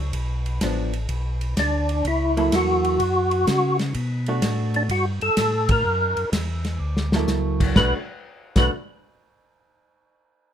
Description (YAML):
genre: soul jazz organ trio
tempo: 126 BPM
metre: 4/4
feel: swing 67% on 8ths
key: B minor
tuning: A4 = 439 Hz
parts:
  - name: tonewheel organ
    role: bass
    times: 0.0-8.7 s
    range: A1 to C#3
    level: -24 LUFS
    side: equal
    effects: slow rotary speaker
  - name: warm soul drum kit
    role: drums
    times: 0.1-8.6 s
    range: crash cymbal, hi-hat, kick drum, ride cymbal, snare drum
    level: -24 LUFS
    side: equal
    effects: none
  - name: vintage hollow-body jazz guitar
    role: accompaniment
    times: 0.6-8.7 s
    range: E#3 to A4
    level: -26 LUFS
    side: right 3 dB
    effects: none
  - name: percussive tonewheel organ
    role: melody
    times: 1.6-8.7 s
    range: D4 to B4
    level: -21 LUFS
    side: left 1 dB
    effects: slow rotary speaker, chorus vibrato
room: light reverb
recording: minimal, uncompressed stereo recording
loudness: -20 LUFS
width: side -9 dB against mid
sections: 0.0-7.8 A section; 7.8-9.7 B section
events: band accent 5.6; drum fill 6.8-7.3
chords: 0.1 Asus24; 2.0 F#7#9; 4.0 Bm7; 5.9 F#7#9; 7.8 Bm7